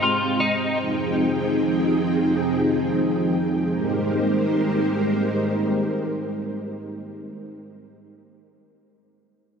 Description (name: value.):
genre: dream pop.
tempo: free time.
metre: none.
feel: none.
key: Ab major.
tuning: A4 = 441 Hz.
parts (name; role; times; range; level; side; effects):
string machine, cellos; sustained chords; 0.0-7.5 s; F3 to G5; -21 LUFS; equal; ensemble chorus.
twelve-string electric guitar; arpeggios; 0.0-0.8 s; Eb4 to F4; -24 LUFS; left 1 dB; ensemble chorus, tape echo.
room: wet huge ambient reverb, RT60 4.7 s.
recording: none.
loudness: -20 LUFS.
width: side -6 dB against mid.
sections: 0.0-3.7 A section; 3.7-6.7 B section.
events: none.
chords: 0.0 Abmaj7; 0.8 Fm7; 3.7 Abmaj9.